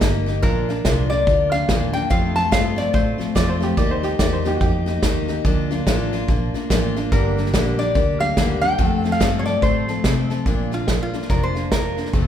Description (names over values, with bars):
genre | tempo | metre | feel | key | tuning
honky-tonk and classic country | 144 BPM | 4/4 | swing 61% on 8ths | Bb major | A4 = 437 Hz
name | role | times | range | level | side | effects
lap resonator guitar | melody | 0.0-3.3, 7.1-12.1 s | F4 to A5 | -23 LUFS | left 1 dB | none
picked steel-string acoustic guitar | accompaniment | 0.0-12.3 s | F2 to A4 | -23 LUFS | left 3 dB | none
vintage muted fingered electric bass | bass | 0.0-12.3 s | F1 to C3 | -24 LUFS | right 1 dB | none
natural country drum kit | drums | 0.0-12.3 s | hi-hat, kick drum, snare drum | -22 LUFS | right 1 dB | none
bright upright piano | second line | 3.4-4.9 s | Gb4 to D5 | -26 LUFS | right 4 dB | none
room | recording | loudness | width
moderate recital hall reverb, RT60 1.3 s | recorded in a church or concert hall | -17 LUFS | side -10 dB against mid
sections
0.0-10.5 A section; 10.5-12.3 B section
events
resonator guitar played with a steel bar solo 10.5-12.3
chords
0.4 Bb; 2.1 F; 3.8 Eb; 5.4 Bb; 7.1 Gm; 8.8 F; 10.5 Bb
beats
0.01 | 0.43 0.85 1.27 1.69 | 2.10 2.52 2.94 3.36 | 3.77 4.19 4.61 5.03 | 5.45 5.86 6.28 6.70 | 7.12 7.54 7.95 8.37 | 8.79 9.21 9.62 10.04 | 10.46 10.88 11.30 11.72 | 12.13